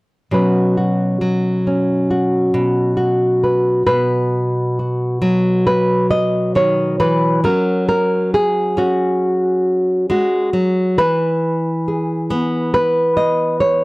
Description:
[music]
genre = folk, solo fingerstyle acoustic guitar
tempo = 68 BPM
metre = 4/4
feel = straight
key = B major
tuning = A4 = 439 Hz
[part]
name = nylon-string guitar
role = solo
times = 0.3-13.8 s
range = B2 to D#5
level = -14 LUFS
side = equal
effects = none
[sound]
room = light reverb, small room reverb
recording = dry, gritty hardware recording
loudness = -14 LUFS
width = side -23 dB against mid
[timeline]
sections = 0.3-3.9 A section; 3.9-13.8 B section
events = none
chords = 0.3 Bsus2; 3.9 B5; 7.4 F#5; 11.0 E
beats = | 0.30 1.20 2.08 2.97 | 3.87 4.77 5.66 6.55 | 7.45 8.33 9.22 10.10 | 10.98 11.86 12.73 13.62

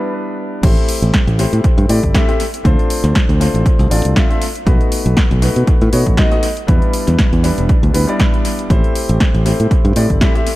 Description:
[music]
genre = nu-disco, nu disco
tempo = 119 BPM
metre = 4/4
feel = swing 55% on 16ths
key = A minor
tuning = A4 = 443 Hz
[part]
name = warm concert grand piano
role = accompaniment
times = 0.0-10.5 s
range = G3 to E5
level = -19 LUFS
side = left 1 dB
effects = sidechain pumping, tape echo
[part]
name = modern bright fingered electric bass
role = bass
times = 0.6-10.2 s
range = E1 to B2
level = -14 LUFS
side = equal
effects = none
[part]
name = electronic kick drum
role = drums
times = 0.6-10.3 s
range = none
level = -14 LUFS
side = equal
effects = none
[part]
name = house drum kit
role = drums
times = 0.6-10.6 s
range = crash cymbal, hi-hat, snare drum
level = -22 LUFS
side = equal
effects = tape echo
[sound]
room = little or no reverb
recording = echo-heavy mix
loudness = -11 LUFS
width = side -17 dB against mid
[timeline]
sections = 0.6-10.6 A section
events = drop 0.6-10.6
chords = 0.0 Em7; 0.6 Am7; 2.6 Dm7; 4.7 B7; 6.7 Em7; 8.7 Am7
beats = 0.13 | 0.63 1.14 1.64 2.15 | 2.65 3.15 3.66 4.16 | 4.67 5.17 5.67 6.18 | 6.68 7.19 7.69 8.20 | 8.70 9.20 9.71 10.21

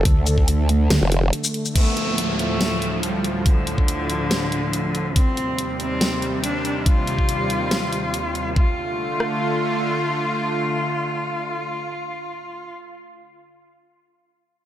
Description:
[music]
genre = heavy wobble dubstep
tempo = 141 BPM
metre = 4/4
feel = half-time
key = D phrygian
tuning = A4 = 440 Hz
[part]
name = supersaw pad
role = sustained chords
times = 0.0-12.7 s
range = D2 to A4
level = -26 LUFS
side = equal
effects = sidechain pumping, low-pass filter
[part]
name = formant-sweep wobble bass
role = bass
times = 0.0-1.3 s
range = F1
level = -18 LUFS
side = equal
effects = chorus, overdrive
[part]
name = growl bass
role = bass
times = 0.1-1.0 s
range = D2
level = -18 LUFS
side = equal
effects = chorus, overdrive
[part]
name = dubstep drum kit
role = drums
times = 0.1-9.3 s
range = kick drum, rim click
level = -18 LUFS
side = equal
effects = none
[part]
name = dubstep drum kit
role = drums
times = 0.1-8.4 s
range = crash cymbal, hi-hat, shaker, snare drum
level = -25 LUFS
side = equal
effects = none
[part]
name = clear cello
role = melody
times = 1.8-12.7 s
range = D3 to F4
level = -25 LUFS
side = left 1 dB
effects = diffuse ambient delay
[part]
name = downlifter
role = sound effects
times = 1.8-5.2 s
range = none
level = -28 LUFS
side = right 2 dB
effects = none
[sound]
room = moderate lush hall reverb, RT60 2.4 s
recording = dreamy mix soaked in reverb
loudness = -19 LUFS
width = side -12 dB against mid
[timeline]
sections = 0.0-1.8 A section; 1.8-8.6 B section; 8.6-12.0 C section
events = drop 0.0-1.8; break 1.3-1.8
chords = 0.0 Dm; 5.2 Cm/Eb; 8.6 Dm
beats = | 0.05 0.48 0.90 1.33 | 1.75 2.18 2.61 3.03 | 3.46 3.88 4.31 4.73 | 5.16 5.58 6.01 6.44 | 6.86 7.29 7.71 8.14 | 8.56 8.99 9.41 9.84 | 10.27 10.69 11.12 11.54

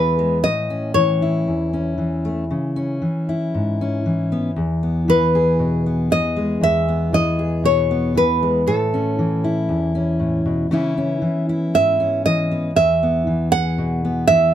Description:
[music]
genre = acoustic folk-pop ballad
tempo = 58 BPM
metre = 4/4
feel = straight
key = E major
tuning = A4 = 438 Hz
[part]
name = nylon-string guitar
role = melody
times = 0.0-14.5 s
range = A4 to F#5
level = -18 LUFS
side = right 1 dB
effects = none
[part]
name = fingerpicked steel-string acoustic guitar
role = accompaniment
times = 0.0-14.5 s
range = E2 to G#4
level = -19 LUFS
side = left 1 dB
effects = none
[sound]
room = light reverb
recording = close, detailed microphones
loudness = -17 LUFS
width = side -10 dB against mid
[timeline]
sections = 0.0-14.5 A section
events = none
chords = 0.4 A; 2.5 C#m; 4.5 E; 8.7 A; 10.7 C#m7; 12.8 E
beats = | 0.43 1.46 2.48 3.51 | 4.55 5.58 6.61 7.63 | 8.66 9.68 10.71 11.73 | 12.75 13.78

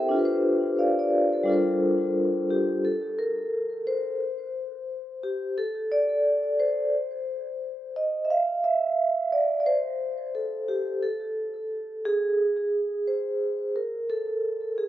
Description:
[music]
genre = hip hop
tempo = 88 BPM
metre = 4/4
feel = swing 56% on 16ths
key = G dorian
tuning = A4 = 437 Hz
[part]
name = vibraphone with soft mallets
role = solo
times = 0.0-14.9 s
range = G3 to G5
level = -24 LUFS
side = equal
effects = low-pass filter, analog delay
[sound]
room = moderate small room reverb, RT60 0.5 s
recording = rough home demo mix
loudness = -24 LUFS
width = side -13 dB against mid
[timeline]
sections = 0.0-2.8 A section; 2.8-13.8 B section; 13.8-14.9 A section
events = vibraphone solo 2.8-13.8, 13.8-14.9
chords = 0.1 F6; 1.5 Gm11; 2.8 N.C.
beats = | 0.12 0.80 1.48 2.16 | 2.85 3.53 4.21 4.89 | 5.57 6.25 6.94 7.62 | 8.30 8.98 9.66 10.35 | 11.03 11.71 12.39 13.07 | 13.75 14.44

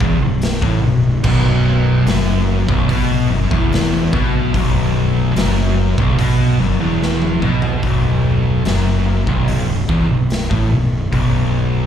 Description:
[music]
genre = stoner and doom metal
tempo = 73 BPM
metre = 4/4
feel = straight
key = unclear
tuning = A4 = 440 Hz
[part]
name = fuzz guitar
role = riff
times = 0.0-11.9 s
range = B1 to B2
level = -19 LUFS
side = left 10 dB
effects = distortion, slapback echo
[part]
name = thick fuzz guitar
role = riff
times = 0.0-11.9 s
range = B1 to B2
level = -18 LUFS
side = right 6 dB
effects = distortion
[part]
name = fuzz fingered electric bass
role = bass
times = 0.0-11.9 s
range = B0 to B1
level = -20 LUFS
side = equal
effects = overdrive
[part]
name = raw garage drum kit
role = drums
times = 0.0-11.3 s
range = crash cymbal, hi-hat, kick drum, snare drum, toms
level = -20 LUFS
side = equal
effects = none
[sound]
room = light reverb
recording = live gig heard through the venue's PA, club reverb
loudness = -13 LUFS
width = side -9 dB against mid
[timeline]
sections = 0.0-7.8 A section; 7.8-11.9 B section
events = drum fill 7.0-7.8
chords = 0.0 B5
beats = 0.42 | 1.24 2.07 2.89 3.71 | 4.54 5.36 6.18 7.01 | 7.83 8.65 9.48 10.30 | 11.13

